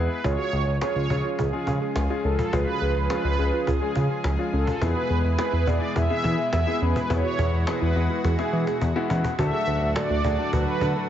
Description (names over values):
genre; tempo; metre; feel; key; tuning
synth-pop; 105 BPM; 4/4; straight; unclear; A4 = 442 Hz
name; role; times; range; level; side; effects
mellow synth brass; melody; 0.0-11.1 s; G#4 to E5; -28 LUFS; right 3 dB; chorus
warm concert grand piano; accompaniment; 0.0-11.1 s; G#3 to B4; -30 LUFS; left 5 dB; none
smooth synth bass; bass; 0.0-10.9 s; C#2 to E3; -25 LUFS; equal; none
lush unison pad; sustained chords; 0.2-11.1 s; A2 to G#4; -31 LUFS; equal; chorus
soft round pluck; arpeggios; 0.2-11.1 s; C#4 to A4; -34 LUFS; right 5 dB; chorus, tape echo
cajon; drums; 0.2-10.9 s; none; -31 LUFS; equal; none
room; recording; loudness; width
light reverb, studio reverb; nothing above 7.7 kHz; -22 LUFS; side -10 dB against mid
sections
0.2-9.4 A section; 9.4-11.1 B section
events
drum fill 8.2-9.4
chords
0.2 C#; 4.8 E; 9.4 D